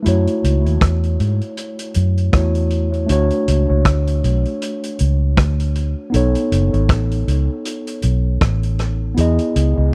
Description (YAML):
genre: lovers rock reggae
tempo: 79 BPM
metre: 4/4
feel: swing 57% on 16ths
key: unclear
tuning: A4 = 438 Hz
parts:
  - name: mellow tine electric piano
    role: accompaniment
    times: 0.0-9.9 s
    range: A3 to D#5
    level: -24 LUFS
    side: equal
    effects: tape echo
  - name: vintage muted fingered electric bass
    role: bass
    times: 0.1-9.9 s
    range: F#1 to G#2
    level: -18 LUFS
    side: equal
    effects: none
  - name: vintage drum kit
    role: drums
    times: 0.1-9.8 s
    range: hi-hat, kick drum, rim click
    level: -21 LUFS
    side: equal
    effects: none
room: studio reverb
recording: dry, close 1970s-style studio recording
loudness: -18 LUFS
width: mono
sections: 0.0-9.9 A section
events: none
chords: 0.1 F#m7; 3.1 Dmaj7; 6.1 B9; 9.2 Emaj7